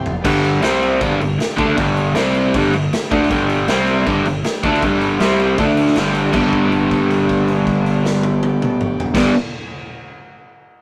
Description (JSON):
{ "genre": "garage rock duo or trio", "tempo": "158 BPM", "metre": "4/4", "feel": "straight", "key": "G major", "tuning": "A4 = 440 Hz", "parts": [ { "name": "overdriven combo organ", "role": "sustained chords", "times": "0.0-9.3 s", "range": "C4 to A5", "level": "-33 LUFS", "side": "equal", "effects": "none" }, { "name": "growling picked electric bass", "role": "bass", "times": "0.0-9.3 s", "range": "F1 to D2", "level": "-30 LUFS", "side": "equal", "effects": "overdrive" }, { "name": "raw garage drum kit", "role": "drums", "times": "0.1-9.2 s", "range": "crash cymbal, kick drum, snare drum, toms", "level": "-26 LUFS", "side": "equal", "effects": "none" }, { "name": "crunchy overdriven guitar", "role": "riff", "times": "0.2-9.3 s", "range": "G2 to D4", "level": "-17 LUFS", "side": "equal", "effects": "none" } ], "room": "moderate stone room reverb, RT60 1.0 s", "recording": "rough rehearsal-room recording, tube saturation", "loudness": "-16 LUFS", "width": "mono", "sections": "0.3-6.3 A section; 6.3-9.4 B section", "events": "drum fill 0.0; transistor combo organ fill 0.0, 5.6-6.3; held note 6.3-9.2", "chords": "0.3 G; 0.6 C5; 1.0 G; 2.2 C5; 2.5 G; 3.7 C5; 4.1 G; 5.2 C5; 5.6 D5; 6.0 G" }